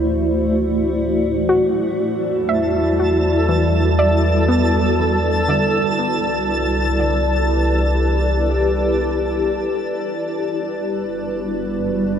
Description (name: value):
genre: ambient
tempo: 60 BPM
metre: 4/4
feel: straight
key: unclear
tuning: A4 = 441 Hz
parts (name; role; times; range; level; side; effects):
- granular cloud pad; sustained chords; 0.0-12.2 s; G3 to D5; -19 LUFS; equal; built-in reverb
- soft round pluck; arpeggios; 0.0-9.6 s; D3 to E5; -22 LUFS; left 1 dB; chorus, vintage 12-bit sampler grit, ping-pong delay
- round analog bass; bass; 0.0-12.2 s; G1 to E2; -22 LUFS; equal; none
- twinkling granular texture; texture; 2.6-10.0 s; A4 to A5; -24 LUFS; right 2 dB; built-in reverb
room: wet huge ambient reverb, RT60 7.5 s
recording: in a vast, echoing space, cassette tape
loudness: -16 LUFS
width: side -8 dB against mid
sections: 0.0-10.0 A section; 10.0-12.2 B section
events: fade-in on analog synth bass 0.0-10.0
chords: 0.0 D9; 2.0 Em9; 6.0 Cmaj9; 10.0 Gmaj7